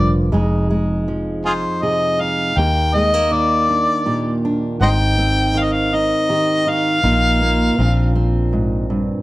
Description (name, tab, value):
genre	acoustic folk-pop ballad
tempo	80 BPM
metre	3/4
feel	straight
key	unclear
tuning	A4 = 440 Hz
part	warm harmonica	melody	0.0-8.2 s	F4 to G5	-18 LUFS	left 1 dB	none
part	fingerpicked steel-string acoustic guitar	accompaniment	0.0-9.2 s	Eb2 to Ab4	-19 LUFS	right 1 dB	none
part	vintage muted fingered electric bass	bass	0.0-9.1 s	F1 to Eb2	-19 LUFS	equal	none
room	moderate large studio reverb, RT60 1.1 s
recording	none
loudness	-15 LUFS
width	side -18 dB against mid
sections	0.3-9.2 A section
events	none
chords	0.3 Fm7; 2.6 Ebmaj7; 4.8 Abmaj7; 7.0 Bbsus4; 7.8 Bbadd9